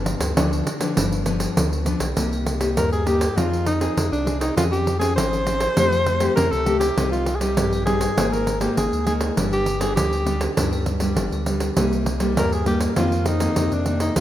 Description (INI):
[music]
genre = samba and choro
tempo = 100 BPM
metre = 4/4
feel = straight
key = C minor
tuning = A4 = 440 Hz
[part]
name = nylon-string guitar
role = accompaniment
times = 0.0-14.2 s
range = F2 to Ab4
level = -24 LUFS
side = left 2 dB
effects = none
[part]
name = warm sub bass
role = bass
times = 0.0-14.2 s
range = G1 to F2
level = -26 LUFS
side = equal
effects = none
[part]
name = pandeiro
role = percussion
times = 0.1-14.2 s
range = none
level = -24 LUFS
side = right 2 dB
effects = none
[part]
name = breathy alto saxophone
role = melody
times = 2.8-14.2 s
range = D4 to C5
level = -23 LUFS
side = equal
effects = none
[sound]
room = moderate lush hall reverb, RT60 2.9 s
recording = rough home demo mix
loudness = -19 LUFS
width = side -12 dB against mid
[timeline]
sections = 0.0-2.2 A section; 2.2-14.2 B section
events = none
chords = 0.0 G7; 2.2 Cm7; 3.4 Fm7; 4.6 Dbmaj7/F; 5.8 Fadd9; 7.0 Cm; 8.2 Absus2; 9.4 G; 11.8 Cm7; 13.0 F7sus4